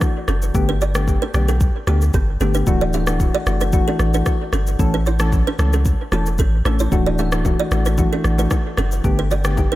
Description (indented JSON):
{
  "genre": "afrobeats",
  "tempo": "113 BPM",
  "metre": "4/4",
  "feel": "straight",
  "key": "D major",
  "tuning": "A4 = 440 Hz",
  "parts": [
    { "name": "soft electric-piano-like synth keys", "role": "accompaniment", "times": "0.0-9.6 s", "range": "D3 to A4", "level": "-22 LUFS", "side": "left 2 dB", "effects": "chorus, dub echo" },
    { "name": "afro-pop drum kit", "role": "drums", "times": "0.0-9.7 s", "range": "kick drum, rim click, shaker", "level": "-21 LUFS", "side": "equal", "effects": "dub echo" },
    { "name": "kalimba", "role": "riff", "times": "0.3-9.8 s", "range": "A3 to E5", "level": "-26 LUFS", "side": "right 5 dB", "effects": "dub echo" },
    { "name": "punchy sub bass", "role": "bass", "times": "0.3-9.7 s", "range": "D1 to D2", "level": "-19 LUFS", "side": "equal", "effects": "none" },
    { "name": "congas and bongos", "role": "percussion", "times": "6.9-9.7 s", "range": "none", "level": "-29 LUFS", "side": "left 2 dB", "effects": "none" }
  ],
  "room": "little or no reverb",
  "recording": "echo-heavy mix",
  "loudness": "-16 LUFS",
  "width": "side -16 dB against mid",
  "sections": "0.0-9.8 A section",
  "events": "none",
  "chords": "0.0 D (rootless); 0.5 Gadd9; 2.7 Dadd9; 4.8 A; 6.9 Dadd9; 9.0 Gadd9"
}